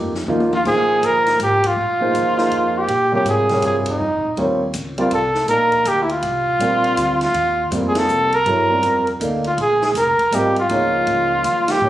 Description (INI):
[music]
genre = modal jazz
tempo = 161 BPM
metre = 3/4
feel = swing 64% on 8ths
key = Bb dorian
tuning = A4 = 440 Hz
[part]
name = warm grand piano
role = accompaniment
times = 0.0-11.9 s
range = C3 to F5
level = -21 LUFS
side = right 1 dB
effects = none
[part]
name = upright bass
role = bass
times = 0.0-11.9 s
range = F1 to Bb2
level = -28 LUFS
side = equal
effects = none
[part]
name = open jazz drum kit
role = drums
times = 0.1-11.7 s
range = crash cymbal, hi-hat, kick drum, ride cymbal, snare drum, toms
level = -30 LUFS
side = left 2 dB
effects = none
[part]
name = mellow trumpet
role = melody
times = 0.5-11.9 s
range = Eb4 to Bb4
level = -16 LUFS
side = equal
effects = plate reverb
[sound]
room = moderate club reverb, RT60 0.6 s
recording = recorded on a phone in the room, club reverb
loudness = -15 LUFS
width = side -13 dB against mid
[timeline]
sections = 0.7-11.9 A section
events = drum fill 0.3-0.7; band accent 1.6, 3.8, 7.9, 11.6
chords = 0.0 Cm11 (rootless); 0.7 Bbm11; 5.1 Cm11; 9.6 Bbm11